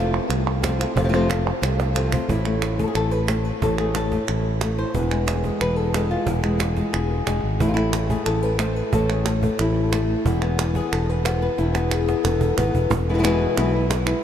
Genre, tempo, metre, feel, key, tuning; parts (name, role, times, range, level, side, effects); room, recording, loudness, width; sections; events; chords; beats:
flamenco; 181 BPM; 4/4; straight; A4 = 440 Hz
flamenco guitar; melody; 0.0-14.2 s; E2 to C5; -23 LUFS; left 2 dB
fingered electric bass; bass; 0.0-14.1 s; E1 to C2; -23 LUFS; equal
cajon; percussion; 0.1-14.1 s; -30 LUFS; right 3 dB
palmas hand claps; percussion; 0.1-14.2 s; -30 LUFS; right 7 dB
mellow hollow wooden flute; second line; 11.9-12.9 s; G#4 to B4; -29 LUFS; left 3 dB
moderate huge ambient reverb, RT60 8.2 s; in a vast, echoing space; -19 LUFS; side -9 dB against mid
0.0-2.3 A section; 2.3-12.9 B section; 12.9-14.2 A section
drum fill 1.6-2.3, 11.6-12.9
0.0 F; 2.3 A5; 4.9 E; 7.6 Asus2; 10.3 E5; 12.9 E
0.30 0.63 | 0.96 1.29 1.63 1.96 | 2.29 2.62 2.96 3.29 | 3.62 3.95 4.28 4.61 | 4.95 5.28 5.61 5.94 | 6.27 6.61 6.94 7.27 | 7.60 7.93 8.26 8.60 | 8.93 9.26 9.59 9.93 | 10.26 10.59 10.92 11.25 | 11.59 11.92 12.25 12.58 | 12.91 13.25 13.58 13.91